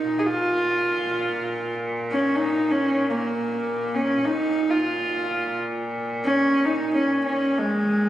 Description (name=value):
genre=mongolian traditional, Mongolian folk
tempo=free time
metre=none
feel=none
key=Bb yu mode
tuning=A4 = 441 Hz
part: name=clear horsehead fiddle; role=melody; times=0.0-8.1 s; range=Ab3 to Ab4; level=-21 LUFS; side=equal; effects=none
part: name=clear cello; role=drone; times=0.0-8.1 s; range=Bb2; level=-31 LUFS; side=equal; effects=none
room=wet scoring stage reverb, RT60 1.9 s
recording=recorded on a phone in the room, club reverb, compression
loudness=-21 LUFS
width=side -13 dB against mid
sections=0.0-8.1 A section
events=none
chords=none